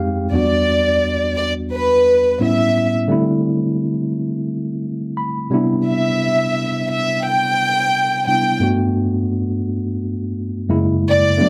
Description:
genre	soul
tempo	87 BPM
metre	4/4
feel	straight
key	unclear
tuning	A4 = 440 Hz
part	tine electric piano	accompaniment	0.0-11.5 s	E2 to B5	-21 LUFS	equal	overdrive
part	warm chamber violin section	melody	0.3-11.5 s	B4 to G5	-19 LUFS	equal	none
room	moderate small room reverb, RT60 0.6 s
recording	none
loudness	-18 LUFS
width	mono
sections	0.0-11.4 A section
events	tine electric piano fill 0.0-0.3, 4.8-5.9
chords	0.3 Em9; 2.4 A7; 3.1 D7sus4; 5.5 Cmaj9; 8.6 Gmaj9; 10.7 F#7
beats	| 0.33 1.02 1.71 2.40 | 3.10 3.79 4.48 5.17 | 5.86 6.55 7.25 7.94 | 8.63 9.32 10.01 10.70 | 11.39

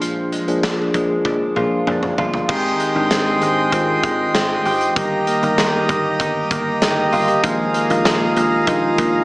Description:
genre	1980s-style pop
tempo	97 BPM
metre	4/4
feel	straight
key	unclear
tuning	A4 = 439 Hz
part	bell-like tine electric piano	accompaniment	0.0-9.2 s	Eb3 to G5	-20 LUFS	left 1 dB	phaser
part	direct-recorded clean electric guitar	riff	0.0-9.2 s	Eb3 to G4	-24 LUFS	right 1 dB	analog chorus, digital delay
part	dry thumbed slap bass	bass	0.0-9.2 s	G1 to Bb1	-26 LUFS	equal	none
part	big rock drum kit	drums	0.0-9.1 s	crash cymbal, hi-hat, kick drum, snare drum, toms	-23 LUFS	equal	gated reverb
part	accordion	sustained chords	2.5-9.2 s	Ab3 to Eb6	-19 LUFS	right 1 dB	none
room	moderate lush hall reverb, RT60 2.5 s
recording	small speaker sound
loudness	-15 LUFS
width	side -24 dB against mid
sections	0.0-2.5 A section; 2.5-9.2 B section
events	drum fill 1.3-2.5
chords	0.0 Bb7; 2.5 Abmaj7; 5.0 Eb/G; 7.4 Bb7sus4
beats	| 0.01 0.63 1.25 1.87 | 2.49 3.11 3.73 4.34 | 4.96 5.58 6.20 6.82 | 7.44 8.06 8.68

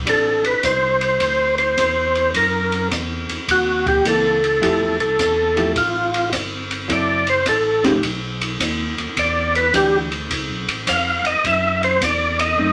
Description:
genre	soul jazz organ trio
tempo	106 BPM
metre	4/4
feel	swing 67% on 8ths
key	unclear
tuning	A4 = 440 Hz
part	tonewheel organ	bass	0.0-12.7 s	F#1 to F#2	-30 LUFS	equal	chorus vibrato, slow rotary speaker
part	percussive tonewheel organ	melody	0.1-12.7 s	F4 to E#5	-19 LUFS	equal	slow rotary speaker, overdrive, chorus vibrato
part	archtop guitar, miked and amplified	accompaniment	0.1-12.7 s	E3 to A4	-25 LUFS	equal	none
part	open jazz drum kit	drums	0.1-12.5 s	hi-hat, kick drum, ride cymbal, snare drum	-26 LUFS	equal	none
room	wet studio reverb, RT60 0.5 s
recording	none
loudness	-19 LUFS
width	mono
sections	0.0-12.7 A section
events	tonewheel organ solo 0.0-12.7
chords	0.1 Am7; 2.3 F#7#11; 4.6 Fmaj9; 6.9 F#m7b5; 8.0 B; 9.2 Em9; 10.3 C#aug7; 11.4 D9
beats	| 0.07 0.64 1.21 1.78 | 2.34 2.91 3.48 4.05 | 4.62 5.19 5.76 6.32 | 6.89 7.46 8.03 8.60 | 9.17 9.74 10.30 10.87 | 11.44 12.01 12.58

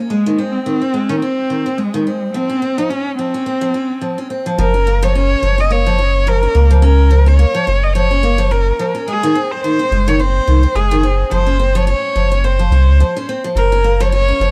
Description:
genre	folktronica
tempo	107 BPM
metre	4/4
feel	swing 56% on 16ths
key	Gb lydian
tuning	A4 = 441 Hz
part	picked steel-string acoustic guitar	arpeggios	0.0-14.5 s	Eb3 to Db4	-22 LUFS	equal	tape echo
part	rich cello	melody	0.1-14.5 s	Ab3 to Eb5	-20 LUFS	equal	tape echo
part	warm sub bass	bass	4.6-14.5 s	Gb1 to Db2	-15 LUFS	equal	none
room	little or no reverb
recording	dark, warm production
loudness	-15 LUFS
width	mono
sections	0.0-4.6 A section; 4.6-14.5 B section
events	none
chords	0.1 Ab; 2.3 Dbmaj7; 4.6 Gbmaj7; 9.1 Ab7; 11.3 Dbmaj7/Gb; 13.6 Gbmaj7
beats	| 0.10 0.66 1.22 1.78 | 2.34 2.90 3.46 4.03 | 4.59 5.15 5.71 6.27 | 6.83 7.39 7.95 8.51 | 9.07 9.63 10.19 10.75 | 11.31 11.88 12.44 13.00 | 13.56 14.12

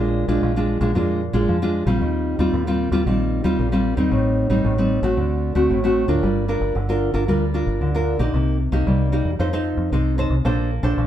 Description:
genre	samba and choro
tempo	114 BPM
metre	4/4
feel	straight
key	unclear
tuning	A4 = 438 Hz
part	nylon-string guitar	accompaniment	0.0-11.1 s	A2 to C5	-20 LUFS	equal	none
part	deep dub fingered electric bass	bass	0.0-11.1 s	G1 to F2	-22 LUFS	equal	none
room	moderate studio reverb, RT60 0.7 s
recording	heard from further back in the room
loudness	-18 LUFS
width	side -11 dB against mid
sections	0.0-11.1 A section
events	none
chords	0.0 Bb7; 2.0 Eb69; 4.1 Am7b5; 5.2 D7; 6.2 Gm7; 8.3 Cm7; 9.4 F7; 10.4 Bbmaj9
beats	0.43 0.95 1.48 | 2.01 2.53 3.06 3.59 | 4.12 4.64 5.17 5.70 | 6.22 6.75 7.28 7.81 | 8.34 8.86 9.39 9.92 | 10.45 10.98

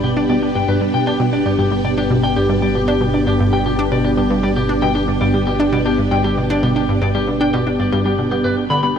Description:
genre	ambient, sequencer-driven space music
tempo	116 BPM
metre	4/4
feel	straight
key	G major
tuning	A4 = 442 Hz
part	string machine, full ensemble	sustained chords	0.0-9.0 s	B3 to D5	-19 LUFS	right 1 dB	ensemble chorus
part	clean electric guitar	arpeggios	0.0-9.0 s	G4 to B5	-22 LUFS	left 3 dB	auto-pan, analog delay
part	analog pluck	riff	0.0-9.0 s	G2 to D4	-18 LUFS	equal	chorus, analog delay
part	analog drone	bass	0.0-9.0 s	G1	-26 LUFS	equal	chorus
room	moderate huge ambient reverb, RT60 7.1 s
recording	none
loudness	-14 LUFS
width	side -8 dB against mid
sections	0.0-9.0 A section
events	none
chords	0.0 G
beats	0.30 | 0.81 1.33 1.85 2.37 | 2.88 3.40 3.92 4.43 | 4.95 5.47 5.99 6.50 | 7.02 7.54 8.05 8.57

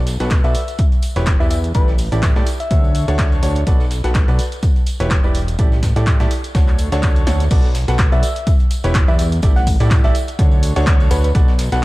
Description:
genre	piano house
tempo	125 BPM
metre	4/4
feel	swing 56% on 16ths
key	unclear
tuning	A4 = 440 Hz
part	fat analog bass	bass	0.0-11.8 s	E1 to A2	-18 LUFS	equal	sidechain pumping
part	breakbeat sampler-style drum kit	drums	0.1-11.8 s	hi-hat, snare drum	-36 LUFS	equal	none
part	punchy analog drum machine	drums	0.1-11.8 s	crash cymbal, handclaps, hi-hat, snare drum	-26 LUFS	equal	none
part	tambourine	percussion	0.1-11.8 s	none	-36 LUFS	right 1 dB	none
part	clear baby grand piano	riff	0.2-11.8 s	D4 to F#5	-24 LUFS	right 1 dB	sidechain pumping, dub echo
part	electronic kick drum	drums	0.3-11.5 s	none	-15 LUFS	equal	none
part	soft struck synth lead	melody	0.4-3.3, 8.1-11.3 s	B4 to F#5	-26 LUFS	left 1 dB	chorus, dub echo
room	little or no reverb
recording	dark, warm production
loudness	-13 LUFS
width	side -19 dB against mid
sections	0.0-7.5 A section; 7.5-11.8 B section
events	drum fill 7.3; drop 7.5-11.8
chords	0.0 Bm7; 0.8 Em7; 1.7 A7sus4; 2.5 Dmaj7; 3.7 Bm7; 4.6 Em7; 5.6 A7sus4; 6.3 Dmaj7; 7.5 Bm7; 8.5 Em7; 9.4 A7sus4; 10.1 Dmaj7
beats	0.31 0.79 1.27 | 1.75 2.23 2.71 3.19 | 3.67 4.15 4.63 5.11 | 5.59 6.07 6.55 7.03 | 7.51 7.99 8.47 8.95 | 9.43 9.91 10.39 10.87 | 11.35 11.83

